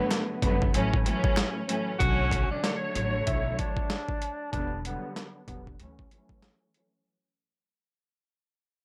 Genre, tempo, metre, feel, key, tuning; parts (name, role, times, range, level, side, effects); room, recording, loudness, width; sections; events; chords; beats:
hip hop, boom-bap hip-hop; 95 BPM; 4/4; swing 59% on 16ths; B minor; A4 = 439 Hz
warm studio string section; accompaniment; 0.0-7.0 s; G2 to C#5; -33 LUFS; equal; cassette tape, high-pass filter, low-pass filter
boom bap sampler-style drum kit; drums; 0.1-6.9 s; hi-hat, kick drum, snare drum; -31 LUFS; equal; overdrive
finger snaps; percussion; 0.1-1.5 s; -38 LUFS; equal
upright bass; bass; 0.4-6.1 s; E1 to D2; -35 LUFS; equal
breathy tenor saxophone; melody; 2.0-5.6 s; B3 to F#4; -35 LUFS; equal; high-pass filter, low-pass filter, tape echo
little or no reverb; -28 LUFS; mono
0.0-2.0 A section; 2.0-7.1 B section
fade-out 2.0-7.1; filter sweep 2.0-7.1
0.0 Gmaj9; 0.7 F#m7/A; 2.0 Bm7; 4.5 Em7; 5.8 Dmaj7
0.11 0.74 1.37 | 2.00 2.63 3.27 3.90 | 4.53 5.16 5.79 6.42